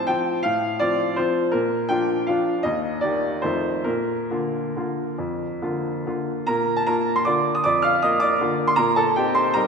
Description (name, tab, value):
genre	classical, piano waltz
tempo	133-173 BPM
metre	3/4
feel	rubato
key	Bb major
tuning	A4 = 438 Hz
part	bright upright piano	solo	0.0-9.7 s	Eb2 to F6	-20 LUFS	equal	none
room	wet concert hall reverb, RT60 2.5 s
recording	minimal, uncompressed stereo recording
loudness	-20 LUFS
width	side -5 dB against mid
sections	0.0-6.5 A section; 6.5-9.7 B section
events	none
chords	0.0 F/A; 1.5 Bb; 2.7 Eb; 3.4 F7; 3.9 Bb; 8.8 Cm7/Bb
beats	0.07 | 0.43 0.79 1.16 | 1.53 1.90 2.28 | 2.65 3.03 3.44 | 3.87 4.31 4.76 | 5.19 5.62 6.05 | 6.48 6.87 7.27 | 7.65 8.03 8.41 | 8.79 9.16 9.55